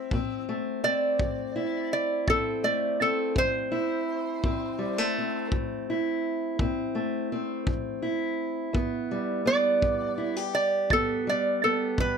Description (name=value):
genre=acoustic country blues, solo or duo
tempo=56 BPM (dotted quarters)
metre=12/8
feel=straight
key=unclear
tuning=A4 = 440 Hz
part: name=lap resonator guitar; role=melody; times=0.0-12.2 s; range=E4 to D5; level=-26 LUFS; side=right 2 dB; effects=none
part: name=fingerpicked steel-string acoustic guitar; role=accompaniment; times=0.0-12.2 s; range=E2 to G4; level=-29 LUFS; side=equal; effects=none
part: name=kick drum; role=drums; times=0.1-12.1 s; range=none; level=-30 LUFS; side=left 1 dB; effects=none
room=light reverb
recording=close, detailed microphones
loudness=-25 LUFS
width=side -6 dB against mid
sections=0.0-12.2 A section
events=none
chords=0.0 Am; 8.7 Em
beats=| 0.12 1.20 2.28 3.36 | 4.44 5.51 6.59 7.67 | 8.75 9.82 10.90 11.97